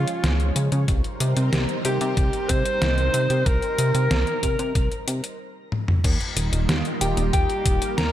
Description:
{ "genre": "synthwave", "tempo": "93 BPM", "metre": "4/4", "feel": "straight", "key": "unclear", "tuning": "A4 = 440 Hz", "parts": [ { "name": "mellow alto saxophone", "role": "melody", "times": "0.0-8.1 s", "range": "F4 to C5", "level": "-26 LUFS", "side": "equal", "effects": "vintage 12-bit sampler grit, digital delay, shimmer reverb" }, { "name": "analog string pad", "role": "sustained chords", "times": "0.0-8.1 s", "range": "F3 to Db5", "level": "-30 LUFS", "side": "right 1 dB", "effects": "ensemble chorus, sidechain pumping, shimmer reverb" }, { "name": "chorused synth bass", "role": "bass", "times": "0.0-8.1 s", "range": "Eb1 to Db3", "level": "-23 LUFS", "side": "equal", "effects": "sidechain pumping" }, { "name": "detuned 8-bit digital drum machine", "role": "drums", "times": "0.1-8.1 s", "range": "crash cymbal, hi-hat, snare drum, toms", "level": "-26 LUFS", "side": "left 1 dB", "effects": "none" }, { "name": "electronic kick drum", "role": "drums", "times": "0.9-7.8 s", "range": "none", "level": "-23 LUFS", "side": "equal", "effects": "none" }, { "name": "soft synth bell", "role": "second line", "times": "7.0-8.1 s", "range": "G5 to Bb5", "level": "-29 LUFS", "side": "left 3 dB", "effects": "chorus, phaser, shimmer reverb" } ], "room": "light reverb", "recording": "none", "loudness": "-20 LUFS", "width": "side -12 dB against mid", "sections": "0.0-6.0 A section; 6.0-8.1 B section", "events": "drum fill 5.7-6.0", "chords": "0.0 Db; 0.9 Cm7; 6.0 Ebadd9", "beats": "0.24 | 0.88 1.53 2.17 2.82 | 3.46 4.11 4.75 5.40 | 6.04 6.69 7.33 7.98" }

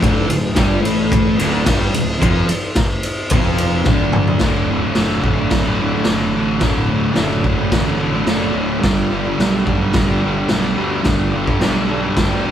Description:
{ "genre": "garage rock duo or trio", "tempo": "109 BPM", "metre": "4/4", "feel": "straight", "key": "unclear", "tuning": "A4 = 437 Hz", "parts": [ { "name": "fuzz guitar", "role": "riff", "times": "0.0-12.5 s", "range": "D2 to A3", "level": "-17 LUFS", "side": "equal", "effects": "distortion" }, { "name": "fuzz fingered electric bass", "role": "bass", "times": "0.0-12.5 s", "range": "D1 to D2", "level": "-24 LUFS", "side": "equal", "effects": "overdrive" }, { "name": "raw garage drum kit", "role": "drums", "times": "0.0-12.3 s", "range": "crash cymbal, kick drum, ride cymbal, snare drum, toms", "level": "-18 LUFS", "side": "equal", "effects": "none" } ], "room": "light reverb", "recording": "band playing live in one room", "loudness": "-14 LUFS", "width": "side -10 dB against mid", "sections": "0.0-4.4 A section; 4.4-12.5 B section", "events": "drum fill 3.9-4.4", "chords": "0.0 D5; 4.4 D; 8.8 G", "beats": "| 0.01 0.56 1.11 1.66 | 2.21 2.76 3.31 3.86 | 4.41 4.96 5.51 6.07 | 6.62 7.17 7.72 8.28 | 8.83 9.39 9.94 10.50 | 11.05 11.61 12.16" }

